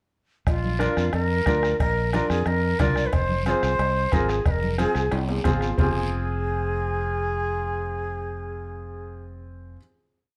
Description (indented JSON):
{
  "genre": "latin, cumbia",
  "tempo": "181 BPM",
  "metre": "4/4",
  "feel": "straight",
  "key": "F dorian",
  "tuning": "A4 = 440 Hz",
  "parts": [
    { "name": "bright shakuhachi", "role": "second line", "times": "0.5-9.2 s", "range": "F4 to D5", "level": "-30 LUFS", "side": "equal", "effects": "none" },
    { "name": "fingered electric bass", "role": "bass", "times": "0.5-9.8 s", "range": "F1 to F2", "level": "-29 LUFS", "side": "equal", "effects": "none" },
    { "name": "bombo", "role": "percussion", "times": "0.5-5.9 s", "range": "none", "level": "-29 LUFS", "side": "equal", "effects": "none" },
    { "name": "cowbell and timbales", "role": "percussion", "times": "0.5-5.9 s", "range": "none", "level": "-37 LUFS", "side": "equal", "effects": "none" },
    { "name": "guiro", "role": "percussion", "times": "0.5-5.9 s", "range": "none", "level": "-44 LUFS", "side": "equal", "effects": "none" },
    { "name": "congas", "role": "percussion", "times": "0.6-5.9 s", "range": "none", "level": "-34 LUFS", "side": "equal", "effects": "none" },
    { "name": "clear upright piano", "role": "accompaniment", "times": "0.8-9.8 s", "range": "C4 to Bb4", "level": "-31 LUFS", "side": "equal", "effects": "none" }
  ],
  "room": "moderate large studio reverb, RT60 0.9 s",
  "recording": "dark, warm production",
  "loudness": "-24 LUFS",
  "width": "mono",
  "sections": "0.5-5.8 groove; 5.8-8.4 final chord",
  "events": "drum fill 5.1-5.8",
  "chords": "0.5 Bb; 3.1 Fm"
}